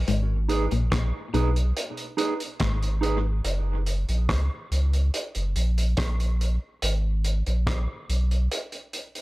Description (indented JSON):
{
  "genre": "dub reggae",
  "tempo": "71 BPM",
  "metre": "4/4",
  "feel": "straight",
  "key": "G# minor",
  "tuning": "A4 = 439 Hz",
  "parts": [
    { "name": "warm sub bass", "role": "bass", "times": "0.0-8.5 s", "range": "F#1 to C#2", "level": "-24 LUFS", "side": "equal", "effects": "none" },
    { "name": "clean electric guitar", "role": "riff", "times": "0.1-2.9 s", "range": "G#2 to B2", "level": "-30 LUFS", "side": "left 4 dB", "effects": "tape echo" },
    { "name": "cloth-damped thuddy drum kit", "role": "drums", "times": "0.1-9.2 s", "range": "hi-hat, kick drum, rim click", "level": "-30 LUFS", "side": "equal", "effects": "none" },
    { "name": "mellow electric guitar", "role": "accompaniment", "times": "0.5-3.3 s", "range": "D#4 to B4", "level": "-30 LUFS", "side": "right 4 dB", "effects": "tape echo" }
  ],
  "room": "small room ambience",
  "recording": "faint mains hum",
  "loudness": "-23 LUFS",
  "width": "side -19 dB against mid",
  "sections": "0.0-9.2 A section",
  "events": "none",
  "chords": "0.1 G#m; 3.4 F#; 6.8 G#m"
}